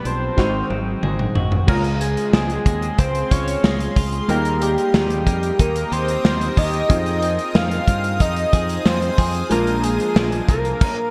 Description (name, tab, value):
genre	1980s-style pop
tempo	92 BPM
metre	4/4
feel	straight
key	unclear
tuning	A4 = 440 Hz
part	fat analog lead	melody	0.0-11.1 s	G4 to F5	-25 LUFS	equal	chorus
part	warm concert grand piano	accompaniment	0.0-10.8 s	B2 to Ab4	-29 LUFS	equal	analog chorus
part	twelve-string electric guitar	riff	0.0-11.1 s	Eb3 to Ab4	-32 LUFS	equal	subtle chorus, digital delay
part	modern bright fingered electric bass	bass	0.1-10.7 s	Ab1 to G2	-27 LUFS	equal	none
part	modern studio drum kit	drums	0.1-11.0 s	crash cymbal, hi-hat, kick drum, snare drum, toms	-22 LUFS	equal	gated reverb
part	granular cloud pad	sustained chords	2.8-10.8 s	Ab4 to Eb6	-34 LUFS	equal	built-in reverb, subtle chorus
room	moderate plate reverb, RT60 2.5 s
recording	bright 1980s-style digital production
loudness	-19 LUFS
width	mono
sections	0.0-1.7 A section; 1.7-11.1 B section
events	drum fill 0.4-1.7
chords	0.4 Ab7; 1.7 Dbmaj7; 4.3 Eb; 6.9 Fm7; 9.5 Bb7